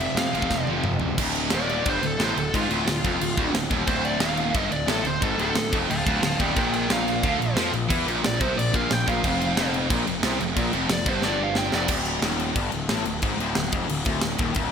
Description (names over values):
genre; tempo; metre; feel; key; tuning
heavy metal; 180 BPM; 4/4; straight; D minor; A4 = 440 Hz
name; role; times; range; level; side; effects
high-gain lead guitar; melody; 0.0-11.9 s; F4 to A5; -28 LUFS; equal; distortion, digital delay
distorted electric guitar; riff; 0.0-14.7 s; D2 to F3; -30 LUFS; left 9 dB; distortion
distorted electric guitar; riff; 0.0-14.7 s; D2 to F3; -30 LUFS; equal; overdrive
heavy high-gain guitar; riff; 0.0-11.9 s; D2 to F3; -29 LUFS; right 9 dB; distortion
fuzz picked electric bass; bass; 0.0-14.7 s; D1 to F2; -30 LUFS; equal; overdrive
tight metal drum kit; drums; 0.0-14.6 s; crash cymbal, kick drum, snare drum, toms; -26 LUFS; equal; gated reverb
room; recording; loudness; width
moderate lush hall reverb, RT60 1.8 s, small room ambience; bright 1980s-style digital production; -21 LUFS; side -7 dB against mid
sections
0.0-1.2 A section; 1.2-11.9 B section; 11.9-14.7 C section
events
drum fill 0.5-1.2, 11.2-11.9; lead electric guitar solo 1.2-11.9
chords
0.0 F5; 1.2 Dm; 6.6 Bb5; 9.2 F5; 11.9 Dm